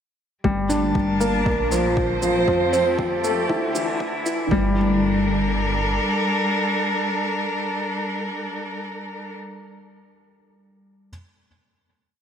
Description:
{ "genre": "piano and strings electronica", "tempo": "118 BPM", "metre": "4/4", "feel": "straight", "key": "G dorian", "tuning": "A4 = 442 Hz", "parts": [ { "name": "rich string quartet", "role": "sustained chords", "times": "0.4-9.3 s", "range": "Bb2 to A5", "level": "-24 LUFS", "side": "equal", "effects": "sidechain pumping, low-pass filter" }, { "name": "felt-muted upright piano", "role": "riff", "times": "0.4-11.1 s", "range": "E3 to Bb4", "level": "-22 LUFS", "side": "left 1 dB", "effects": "analog delay" }, { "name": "dark detuned saw bass", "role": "bass", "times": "0.4-6.0 s", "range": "G1 to F2", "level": "-28 LUFS", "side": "equal", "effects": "sidechain pumping" }, { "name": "electronic kick drum", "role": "drums", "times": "0.4-4.6 s", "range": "none", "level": "-27 LUFS", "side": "equal", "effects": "overdrive, studio reverb" }, { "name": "shaker", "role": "drums", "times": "0.7-4.4 s", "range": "none", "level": "-35 LUFS", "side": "right 4 dB", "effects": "overdrive, studio reverb" } ], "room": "wet plate reverb, RT60 3.1 s", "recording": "dreamy mix soaked in reverb, high-pass filter", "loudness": "-19 LUFS", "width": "side -8 dB against mid", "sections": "0.4-4.5 build; 4.5-8.6 final chord", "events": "build-up 0.4-4.5; filter sweep 0.4-4.5", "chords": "0.4 Gmadd9; 1.5 Bbsus2; 2.5 Fadd9; 3.5 Dsus2; 4.5 Gmadd9" }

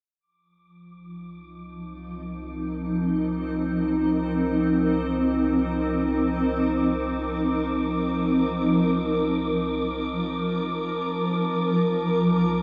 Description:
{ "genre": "ambient", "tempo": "free time", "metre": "none", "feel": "none", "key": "C minor", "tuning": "A4 = 440 Hz", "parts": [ { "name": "granular cloud pad", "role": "sustained chords", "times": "1.1-12.6 s", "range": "F3 to Bb4", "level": "-25 LUFS", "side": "equal", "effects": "built-in reverb, shimmer reverb" }, { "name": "deep rumbling drone", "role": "bass", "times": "1.6-12.6 s", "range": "C2", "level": "-40 LUFS", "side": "equal", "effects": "built-in reverb" }, { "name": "wind-like tuned noise texture", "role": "texture", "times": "0.9-12.6 s", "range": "D6", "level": "-38 LUFS", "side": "equal", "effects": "built-in reverb, shimmer reverb" } ], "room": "wet cathedral reverb, RT60 5.8 s", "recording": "none", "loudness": "-24 LUFS", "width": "mono", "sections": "0.2-12.6 A section", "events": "fade-in on synth drone 0.2-12.6; fade-in on synth texture 0.2-12.6", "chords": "0.2 Cm11; 11.3 Gm7/C" }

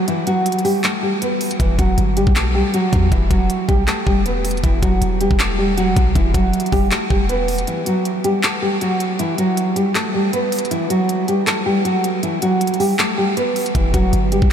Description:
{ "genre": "hip hop, trap", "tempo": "158 BPM", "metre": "4/4", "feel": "half-time", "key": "E minor", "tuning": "A4 = 441 Hz", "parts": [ { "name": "nylon-string guitar", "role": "melody", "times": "0.0-14.5 s", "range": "E3 to B4", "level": "-18 LUFS", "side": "equal", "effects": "low-pass filter, analog delay" }, { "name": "trap drum kit", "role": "drums", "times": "0.1-14.5 s", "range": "handclaps, hi-hat, kick drum", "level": "-21 LUFS", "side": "equal", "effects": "none" }, { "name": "warm 808-style bass", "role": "bass", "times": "1.6-7.7, 13.7-14.5 s", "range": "E1 to E2", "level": "-20 LUFS", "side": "equal", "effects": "none" } ], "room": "moderate huge ambient reverb, RT60 7.0 s", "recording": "dreamy mix soaked in reverb", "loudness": "-15 LUFS", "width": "side -8 dB against mid", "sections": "0.0-14.5 A section", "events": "break 0.0-1.6; kick muted 7.7-13.8", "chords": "0.0 Em" }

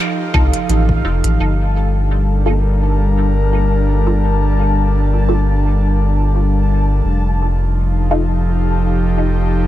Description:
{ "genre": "ambient dub", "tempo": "85 BPM", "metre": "4/4", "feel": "swing 55% on 16ths", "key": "G minor", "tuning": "A4 = 440 Hz", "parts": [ { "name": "airy breathy pad", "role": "sustained chords", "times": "0.0-9.7 s", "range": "F3 to F5", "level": "-20 LUFS", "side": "equal", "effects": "chorus, vintage 12-bit sampler grit" }, { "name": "bubbling stepped-filter texture", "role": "texture", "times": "0.0-9.7 s", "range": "F5 to A5", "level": "-27 LUFS", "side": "left 2 dB", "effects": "chorus, built-in reverb" }, { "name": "filtered dub chord stab", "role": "stabs", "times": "0.3-8.3 s", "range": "Bb3 to A4", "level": "-25 LUFS", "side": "equal", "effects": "phaser, analog chorus, dub echo" }, { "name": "round analog bass", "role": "bass", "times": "0.3-9.7 s", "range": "F1 to C2", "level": "-15 LUFS", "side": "equal", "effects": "tube saturation" }, { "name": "electronic kick drum", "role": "drums", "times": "0.3-1.0 s", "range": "none", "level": "-20 LUFS", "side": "equal", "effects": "overdrive" }, { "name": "electronic hi-hat", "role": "drums", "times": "0.5-1.4 s", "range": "none", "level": "-23 LUFS", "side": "equal", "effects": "dub echo" } ], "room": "digital ambience", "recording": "none", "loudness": "-13 LUFS", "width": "side -13 dB against mid", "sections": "0.0-1.4 A section; 1.4-9.7 B section", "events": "filter sweep on synth stab 1.4-9.7", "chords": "0.0 F7; 1.4 Gm9; 7.0 F7" }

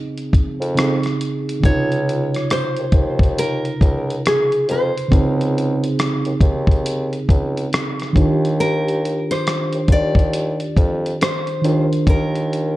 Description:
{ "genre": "lo-fi hip hop", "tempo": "69 BPM", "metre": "4/4", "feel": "swing 61% on 16ths", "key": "Db major", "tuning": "A4 = 440 Hz", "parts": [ { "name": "nylon-string guitar", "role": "melody", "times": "0.0-12.8 s", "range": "Ab4 to Eb5", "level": "-23 LUFS", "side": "left 1 dB", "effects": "none" }, { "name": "muted felt-like synth keys", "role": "accompaniment", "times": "0.0-12.8 s", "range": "C3 to Bb4", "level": "-21 LUFS", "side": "right 2 dB", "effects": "chorus, cassette tape" }, { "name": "dusty soul sampler-style drum kit", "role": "drums", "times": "0.2-12.8 s", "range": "hi-hat, kick drum, rim click", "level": "-18 LUFS", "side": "equal", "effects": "none" }, { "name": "mellow bassoon", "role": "bass", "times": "0.6-12.8 s", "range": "Db2 to F2", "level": "-23 LUFS", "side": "equal", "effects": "none" } ], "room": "light reverb", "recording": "dark, warm production", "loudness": "-16 LUFS", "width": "side -17 dB against mid", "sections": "0.0-1.6 A section; 1.6-12.8 B section", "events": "none", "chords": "0.0 Dbmaj9; 8.2 Ebmaj9" }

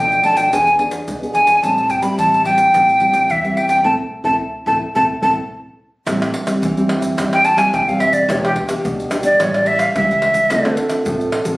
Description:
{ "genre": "samba and choro", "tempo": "108 BPM", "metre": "4/4", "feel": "straight", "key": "A minor", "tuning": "A4 = 440 Hz", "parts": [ { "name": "breathy mellow jazz flute", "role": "melody", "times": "0.0-10.7 s", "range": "G4 to B5", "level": "-14 LUFS", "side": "equal", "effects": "none" }, { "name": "nylon-string guitar", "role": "accompaniment", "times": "0.0-11.6 s", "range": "A2 to A4", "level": "-21 LUFS", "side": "equal", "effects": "none" }, { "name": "upright bass", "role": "bass", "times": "0.0-11.6 s", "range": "E1 to E2", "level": "-29 LUFS", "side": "equal", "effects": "none" }, { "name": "egg shaker, pandeiro, surdo and tamborim", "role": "percussion", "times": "0.1-11.6 s", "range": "none", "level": "-26 LUFS", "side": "equal", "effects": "none" } ], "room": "moderate studio reverb, RT60 0.8 s", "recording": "recorded on a phone in the room, studio reverb", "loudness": "-13 LUFS", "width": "side -22 dB against mid", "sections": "0.0-6.1 A section; 6.1-11.6 B section", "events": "band accent 3.9-6.1; flute solo 6.1-11.6", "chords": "0.0 Bm7b5; 0.5 E7; 1.6 Am7; 8.3 Em7; 9.4 A7; 10.5 Dm7" }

